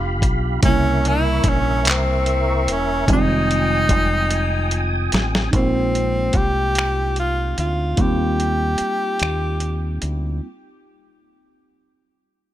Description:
slow six-eight R&B; 49 BPM (dotted quarters); 6/8; straight; Eb major; A4 = 440 Hz
breathy tenor saxophone; melody; 0.0-10.0 s; C4 to G4; -22 LUFS; equal; tape echo
mellow FM electric piano; accompaniment; 0.0-10.4 s; C3 to F4; -25 LUFS; right 2 dB; chorus
tonewheel organ; sustained chords; 0.0-5.5 s; G4 to Eb6; -26 LUFS; equal; overdrive, chorus vibrato, slow rotary speaker
deep dub fingered electric bass; bass; 0.0-10.4 s; E1 to Eb2; -22 LUFS; equal
dusty soul sampler-style drum kit; drums; 0.2-10.2 s; finger snaps, handclaps, hi-hat, kick drum, snare drum; -20 LUFS; equal
little or no reverb; -17 LUFS; side -13 dB against mid
0.0-5.5 A section; 5.5-10.4 B section
drum fill 4.3-5.5; break 9.2-10.4
0.0 G7; 0.6 C7b9; 3.1 Fm9; 5.5 Bb9sus4; 8.0 Eb69

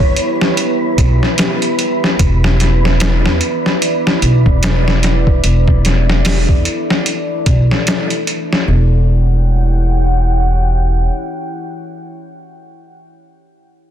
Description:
trip hop; 74 BPM; 4/4; swing 59% on 16ths; E dorian; A4 = 440 Hz
pure breathy sine lead; melody; 0.0-1.4 s; C#5; -24 LUFS; right 2 dB; phaser, ensemble chorus, tape echo
deep dark ambient pad; sustained chords; 0.0-12.1 s; E4 to G5; -20 LUFS; equal; chorus, built-in reverb, vintage 12-bit sampler grit
upright bass; bass; 0.0-11.1 s; E1 to E2; -13 LUFS; equal
trip hop sampler-style drum kit; drums; 0.0-8.7 s; hi-hat, kick drum, snare drum; -15 LUFS; left 1 dB; overdrive
wind-like tuned noise texture; texture; 0.0-8.7 s; B3 to B4; -25 LUFS; right 2 dB; built-in reverb
light reverb; dense, heavily limited modern master; -11 LUFS; side -10 dB against mid
0.0-8.7 A section; 8.7-11.9 B section
0.0 Em6; 2.2 Bm/E; 8.7 Em69

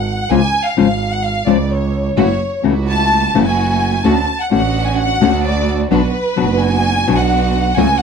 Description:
tango; 128 BPM; 4/4; rubato; A4 = 440 Hz
warm studio violin section; second line; 0.0-8.0 s; B4 to A5; -18 LUFS; left 1 dB
clear double bass; bass; 0.0-8.0 s; F#1 to D2; -18 LUFS; right 4 dB
nylon-string guitar; accompaniment; 0.3-7.9 s; B2 to F#4; -14 LUFS; left 9 dB
rich chamber string section; stabs; 2.2-8.0 s; A3 to F#4; -21 LUFS; right 10 dB
small room ambience; dry, close 1970s-style studio recording; -13 LUFS; side -6 dB against mid
0.0-8.0 A section
violin section solo 0.0-8.0
0.3 C#; 2.2 F#m7; 4.0 Dmaj7; 5.9 Bm

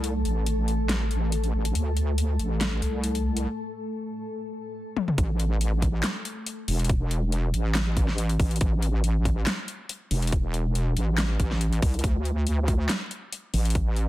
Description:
deep dubstep; 140 BPM; 4/4; swing 53% on 16ths, half-time; A minor; A4 = 440 Hz
granular cloud pad; sustained chords; 0.0-5.2 s; A3 to A4; -32 LUFS; left 2 dB; built-in reverb
wobble bass; bass; 0.0-14.1 s; E1 to D2; -24 LUFS; equal; chorus
dubstep drum kit; drums; 0.0-14.1 s; handclaps, hi-hat, snare drum, toms; -30 LUFS; left 1 dB
electronic kick drum; drums; 5.2-13.8 s; -25 LUFS; equal; overdrive
light reverb, digital ambience; dense, heavily limited modern master; -24 LUFS; side -16 dB against mid
0.0-5.2 A section; 5.2-14.1 B section
build-up 0.0-5.2; break 3.5-5.2; drum fill 5.0; drop 5.2-14.1
0.0 D5; 5.2 A5; 12.0 D5

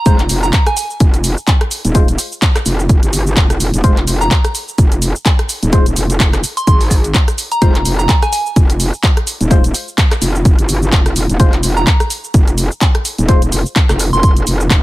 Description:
bass house; 127 BPM; 4/4; swing 57% on 16ths; F minor; A4 = 440 Hz
soft synth bell; melody; 0.0-0.9, 4.2-8.4, 11.8-14.3 s; Ab5 to C6; -19 LUFS; right 1 dB; chorus, ping-pong delay
percussive organ stab; stabs; 0.1-13.4 s; Ab3 to C5; -20 LUFS; left 4 dB; chorus, phaser, sidechain pumping, ping-pong delay
metallic wobble bass; bass; 0.1-14.8 s; Eb1 to Ab1; -15 LUFS; equal; chorus, overdrive, sidechain pumping
electronic kick drum; drums; 0.1-14.8 s; -11 LUFS; equal; overdrive
garage drum kit; drums; 0.1-14.8 s; cabasa, handclaps, hi-hat, rim click; -18 LUFS; equal
digital ambience; -11 LUFS; side -17 dB against mid
0.0-14.8 A section
0.0 Fm

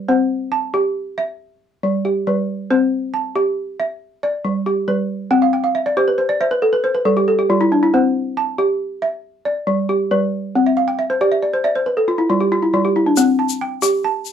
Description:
west african traditional, West African string and xylophone music; 92 BPM (dotted quarters); 12/8; straight; C major; A4 = 440 Hz
balafon; arpeggios; 0.0-14.3 s; G3 to A5; -16 LUFS; equal
egg shaker; percussion; 13.2-14.3 s; -23 LUFS; left 14 dB
light reverb; dry, close 1970s-style studio recording; -16 LUFS; side -8 dB against mid
0.0-13.2 A section; 13.2-14.3 B section
balafon fill 5.3-7.9, 10.7-13.2
0.1 C; 1.4 G; 2.7 C; 4.0 G; 5.3 C; 6.6 N.C.; 7.9 C; 9.2 G; 10.5 C; 11.9 N.C.; 13.2 C5

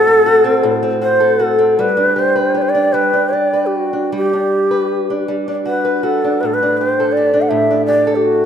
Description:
celtic folk, Celtic slow air; 74-84 BPM; 3/4; rubato; A4 = 440 Hz
breathy mellow shakuhachi; melody; 0.0-8.5 s; F#4 to F#5; -14 LUFS; equal
picked old ladder-braced acoustic guitar; accompaniment; 0.0-8.5 s; A2 to B4; -16 LUFS; equal
moderate concert hall reverb, RT60 2.3 s; minimal, uncompressed stereo recording; -12 LUFS; side -8 dB against mid
0.0-8.5 A section
0.0 Am6; 1.8 G; 4.1 Gmaj7; 6.4 Dsus4/A

